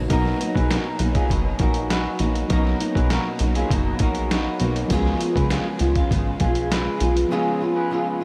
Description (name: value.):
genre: indie pop, bedroom pop.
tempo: 100 BPM.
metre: 4/4.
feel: straight.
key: B lydian.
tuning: A4 = 440 Hz.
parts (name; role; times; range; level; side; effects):
flamenco guitar; accompaniment; 0.0-8.2 s; B2 to E#4; -28 LUFS; equal; ensemble chorus, warbly pitch drift.
soft electric-piano-like synth keys; accompaniment; 0.0-8.2 s; E#3 to A#5; -31 LUFS; equal; chorus.
plucky analog bass; bass; 0.0-7.3 s; F#1 to C#2; -26 LUFS; equal; none.
electric guitar through a small old amp; second line; 0.1-8.1 s; C#4 to B4; -30 LUFS; equal; lush chorus, analog delay.
lo-fi sampler-style drum kit; drums; 0.1-7.3 s; hi-hat, kick drum, snare drum; -27 LUFS; equal; overdrive.
room: moderate huge ambient reverb, RT60 7.4 s.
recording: dreamy mix soaked in reverb.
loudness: -22 LUFS.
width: mono.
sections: 0.1-8.2 A section.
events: none.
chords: 0.1 Bmaj7; 4.9 C#7.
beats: | 0.11 0.71 1.31 1.91 | 2.51 3.11 3.71 4.31 | 4.91 5.51 6.11 6.71 | 7.31 7.91.